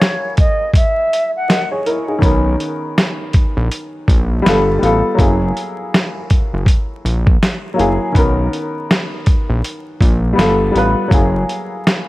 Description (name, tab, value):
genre	lo-fi hip hop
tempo	81 BPM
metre	4/4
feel	swing 61% on 16ths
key	B major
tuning	A4 = 441 Hz
part	mellow jazz flute	melody	0.0-1.7 s	C#5 to F#5	-18 LUFS	equal	low-pass filter
part	dark upright piano	accompaniment	0.0-12.1 s	D#3 to D#5	-18 LUFS	left 1 dB	low-pass filter
part	dusty soul sampler-style drum kit	drums	0.0-12.1 s	hi-hat, kick drum, snare drum	-14 LUFS	equal	none
part	fat analog bass	bass	2.2-11.4 s	F#1 to B1	-16 LUFS	equal	none
room	light reverb, small room reverb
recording	vinyl crackle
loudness	-13 LUFS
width	side -18 dB against mid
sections	0.0-12.1 A section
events	break 0.0-2.2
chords	0.0 F#9; 2.2 Bmaj9; 4.4 G9; 5.2 F#9; 8.1 Bmaj9; 10.4 G9; 11.1 F#9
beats	0.00 0.74 1.48 | 2.22 2.96 3.70 4.44 | 5.18 5.93 6.67 7.41 | 8.15 8.89 9.63 10.37 | 11.11 11.85